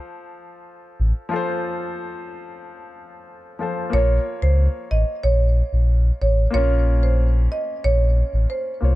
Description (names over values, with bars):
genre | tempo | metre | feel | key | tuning
dancehall | 92 BPM | 4/4 | straight | Bb harmonic minor | A4 = 440 Hz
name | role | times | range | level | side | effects
warm baby grand piano | accompaniment | 0.0-9.0 s | F3 to Db5 | -29 LUFS | left 3 dB | none
sub bass with octave | bass | 1.0-9.0 s | A1 to Db2 | -17 LUFS | equal | none
marimba with medium mallets | melody | 3.9-9.0 s | C5 to Eb5 | -24 LUFS | right 2 dB | none
room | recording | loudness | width
studio ambience | dark, warm production | -18 LUFS | side -17 dB against mid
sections
0.0-3.9 A section; 3.9-9.0 B section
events
none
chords
0.0 F; 3.9 Bbm